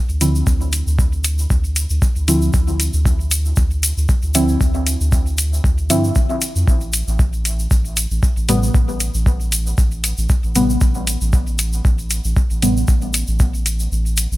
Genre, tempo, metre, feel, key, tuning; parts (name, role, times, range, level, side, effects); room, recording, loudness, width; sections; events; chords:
dub techno; 116 BPM; 4/4; swing 54% on 16ths; D dorian; A4 = 443 Hz
soft dub sub bass; bass; 0.1-14.4 s; A1 to G2; -19 LUFS; equal; sidechain pumping
egg shaker; percussion; 0.1-14.4 s; -24 LUFS; equal
deep mellow chord stab; stabs; 0.2-12.8 s; A2 to E4; -21 LUFS; equal; chorus, phaser, sidechain pumping, dub echo
electronic hi-hat; drums; 0.2-14.3 s; -21 LUFS; left 1 dB; overdrive, small room ambience
electronic kick drum; drums; 0.5-13.5 s; -16 LUFS; equal; overdrive, small room ambience
little or no reverb; bright 1980s-style digital production; -15 LUFS; side -18 dB against mid
0.0-14.4 A section
kick drops out 13.9-14.4
0.0 Dm9; 6.7 Am9